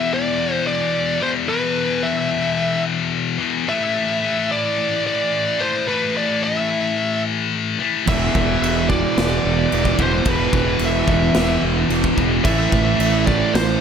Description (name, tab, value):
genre	heavy metal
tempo	110 BPM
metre	4/4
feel	straight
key	unclear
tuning	A4 = 440 Hz
part	high-gain lead guitar	melody	0.0-13.8 s	B4 to E5	-22 LUFS	equal	distortion
part	scooped high-gain guitar	riff	0.0-13.8 s	E2 to A3	-21 LUFS	left 6 dB	distortion
part	crunchy overdriven guitar	riff	8.1-13.8 s	E2 to A3	-25 LUFS	right 3 dB	none
part	distorted electric guitar	riff	8.1-13.8 s	E2 to A3	-23 LUFS	right 16 dB	distortion
part	fuzz fingered electric bass	bass	8.1-13.8 s	E1 to A1	-22 LUFS	equal	overdrive
part	big rock drum kit	drums	8.1-13.7 s	crash cymbal, kick drum, snare drum	-22 LUFS	equal	none
room	light reverb, small room ambience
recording	none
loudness	-17 LUFS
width	side -7 dB against mid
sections	0.0-13.8 A section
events	none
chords	0.0 E5; 3.7 A5; 8.1 E5; 12.5 A5